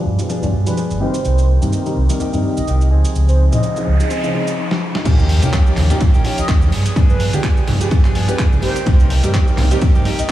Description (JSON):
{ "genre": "filtered disco house", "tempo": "126 BPM", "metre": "4/4", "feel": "swing 56% on 16ths", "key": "Eb mixolydian", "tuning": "A4 = 440 Hz", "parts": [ { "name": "dark grand piano", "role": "accompaniment", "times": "0.0-10.2 s", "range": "B2 to G4", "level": "-23 LUFS", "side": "equal", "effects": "phaser, sidechain pumping, low-pass filter" }, { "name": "direct-recorded clean electric guitar", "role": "riff", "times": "0.0-10.3 s", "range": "F3 to Ab4", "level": "-26 LUFS", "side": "left 3 dB", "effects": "vintage 12-bit sampler grit, sidechain pumping, low-pass filter" }, { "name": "overdriven fingered electric bass", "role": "bass", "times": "0.1-10.3 s", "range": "G1 to D3", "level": "-16 LUFS", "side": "right 1 dB", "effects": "sidechain pumping, low-pass filter" }, { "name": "dusty soul sampler-style drum kit", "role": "drums", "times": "0.2-10.3 s", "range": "crash cymbal, handclaps, hi-hat, ride cymbal, shaker, snare drum", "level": "-26 LUFS", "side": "equal", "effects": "sidechain pumping on perc, sidechain pumping on hats, sidechain pumping on cymbals" }, { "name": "analog synth brass", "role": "melody", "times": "0.7-10.3 s", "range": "B4 to Eb5", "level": "-28 LUFS", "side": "right 2 dB", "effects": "chorus, sidechain pumping, low-pass filter, diffuse ambient delay" }, { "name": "noise sweep and sub drop", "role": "sound effects", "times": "3.8-7.0 s", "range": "none", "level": "-24 LUFS", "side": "right 1 dB", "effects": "none" }, { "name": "electronic kick drum", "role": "drums", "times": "5.1-10.3 s", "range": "none", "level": "-15 LUFS", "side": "right 1 dB", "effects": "overdrive" }, { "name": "tambourine and congas", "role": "percussion", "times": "5.1-10.3 s", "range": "none", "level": "-25 LUFS", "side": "left 2 dB", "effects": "sidechain pumping on perc, low-pass filter on perc" } ], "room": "light reverb", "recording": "studio reverb", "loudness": "-13 LUFS", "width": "side -13 dB against mid", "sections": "0.0-5.1 A section; 5.1-10.3 B section", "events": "filter sweep on drum 0.0-5.1; filter sweep 0.0-5.1; noise sweep 3.8-5.1; drum fill 4.7-5.1; drop 5.1-10.3; impact 5.1-7.0", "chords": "0.0 G7b9; 1.0 Cm7; 2.9 Dbmaj9; 5.1 Eb9; 6.7 G7b9; 8.6 Cm7" }